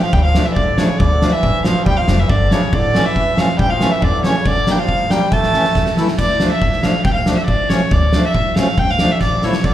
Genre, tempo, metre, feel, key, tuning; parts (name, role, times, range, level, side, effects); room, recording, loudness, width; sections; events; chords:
klezmer; 139 BPM; 2/4; straight; A4 = 440 Hz
warm violin; melody; 0.0-9.7 s; C#5 to A5; -19 LUFS; left 1 dB
brilliant trombone; second line; 0.0-6.0, 9.6-9.7 s; C#3 to A3; -23 LUFS; right 3 dB
accordion; accompaniment; 0.0-9.5 s; E3 to E4; -22 LUFS; left 1 dB
upright bass; bass; 0.1-9.7 s; F1 to E2; -20 LUFS; equal
oversized low-tuned drum kit; drums; 0.1-9.7 s; crash cymbal, kick drum, snare drum; -17 LUFS; equal
moderate scoring stage reverb, RT60 1.7 s; recorded in a church or concert hall; -13 LUFS; side -12 dB against mid
0.0-6.2 A section; 6.2-9.7 A section
drum fill 5.3-6.2, 9.2-9.6
0.0 Dm; 2.7 A; 4.5 Gm; 5.3 A; 6.2 Dm